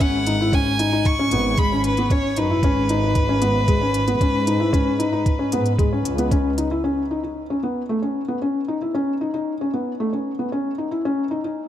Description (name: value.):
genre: piano and strings electronica.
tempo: 114 BPM.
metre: 4/4.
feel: straight.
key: unclear.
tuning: A4 = 440 Hz.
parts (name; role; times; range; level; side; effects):
clear violin; melody; 0.0-6.3 s; B4 to C#6; -25 LUFS; equal; ping-pong delay.
felt-muted upright piano; riff; 0.0-11.6 s; G#3 to E4; -22 LUFS; left 2 dB; ping-pong delay.
dark chamber double bass section; bass; 0.0-6.5 s; G#1 to G#2; -24 LUFS; right 1 dB; sidechain pumping.
electronic hi-hat; drums; 0.0-6.7 s; none; -33 LUFS; left 2 dB; overdrive, low-pass filter on hats.
electronic kick drum; drums; 0.0-6.4 s; none; -20 LUFS; right 1 dB; none.
room: light reverb, small room reverb.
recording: none.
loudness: -18 LUFS.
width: side -11 dB against mid.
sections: 0.0-6.8 A section; 6.8-11.7 B section.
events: none.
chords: 0.0 C#7(no3); 2.6 G#m; 6.8 Aadd9 (rootless).